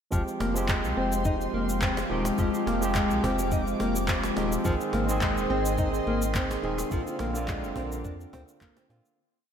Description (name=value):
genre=organic downtempo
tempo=106 BPM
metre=4/4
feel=swing 55% on 16ths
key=F dorian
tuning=A4 = 437 Hz
part: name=barky tine electric piano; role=accompaniment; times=0.1-9.2 s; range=D3 to Ab4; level=-31 LUFS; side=right 2 dB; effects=sidechain pumping, digital delay, shimmer reverb, slapback echo
part: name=airy breathy pad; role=sustained chords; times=0.4-9.2 s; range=Ab3 to D6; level=-33 LUFS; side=left 2 dB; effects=chorus, sidechain pumping, shimmer reverb
part: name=nylon-string guitar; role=arpeggios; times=0.1-9.0 s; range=Eb3 to Eb4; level=-32 LUFS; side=equal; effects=low-pass filter, digital delay, shimmer reverb, slapback echo
part: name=warm sub bass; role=bass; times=0.1-9.0 s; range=Eb1 to Bb2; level=-33 LUFS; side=equal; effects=sidechain pumping
part: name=electronic cabasa and handclaps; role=drums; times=0.1-9.2 s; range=none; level=-34 LUFS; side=equal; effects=slapback echo
part: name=electronic kick drum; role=drums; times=0.1-8.7 s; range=none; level=-29 LUFS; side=equal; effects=none
part: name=cajon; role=percussion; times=0.4-9.0 s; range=none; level=-40 LUFS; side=right 1 dB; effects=slapback echo
room=wet lush hall reverb, RT60 2.5 s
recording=big arena sound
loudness=-25 LUFS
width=side -8 dB against mid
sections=0.1-9.2 groove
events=fade-out 6.2-9.2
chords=0.1 Fmadd9; 4.6 Ab; 6.9 Bbadd9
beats=| 0.12 0.69 1.25 1.82 | 2.38 2.95 3.52 4.08 | 4.65 5.21 5.78 6.35 | 6.91 7.48 8.04 8.61